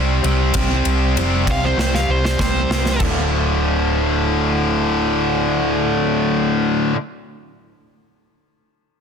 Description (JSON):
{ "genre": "hard rock", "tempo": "98 BPM", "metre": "4/4", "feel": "straight", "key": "unclear", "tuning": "A4 = 440 Hz", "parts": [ { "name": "tight distorted guitar", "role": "riff", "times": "0.0-7.0 s", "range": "D2 to C4", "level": "-21 LUFS", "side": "left 13 dB", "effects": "distortion" }, { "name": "tight distorted guitar", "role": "riff", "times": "0.0-7.0 s", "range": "D2 to C4", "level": "-21 LUFS", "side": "right 10 dB", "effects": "distortion" }, { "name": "hollow-body short-scale fingered electric bass", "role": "bass", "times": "0.0-6.9 s", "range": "D1 to C2", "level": "-22 LUFS", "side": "equal", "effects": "none" }, { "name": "gated 80s drum kit", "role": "drums", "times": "0.2-3.1 s", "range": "crash cymbal, kick drum, ride cymbal, snare drum", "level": "-23 LUFS", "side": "right 1 dB", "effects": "none" }, { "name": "nasal lead guitar with a parked wah", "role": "melody", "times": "1.5-3.0 s", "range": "C5 to F5", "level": "-24 LUFS", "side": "equal", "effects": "overdrive, tape echo" } ], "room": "little or no reverb", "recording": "dense, heavily limited modern master", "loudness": "-16 LUFS", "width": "side -6 dB against mid", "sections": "0.0-3.0 A section; 3.0-5.5 B section", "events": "lead electric guitar solo 0.0-3.0; drum fill 1.8-3.0", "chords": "0.0 C5; 3.0 D5" }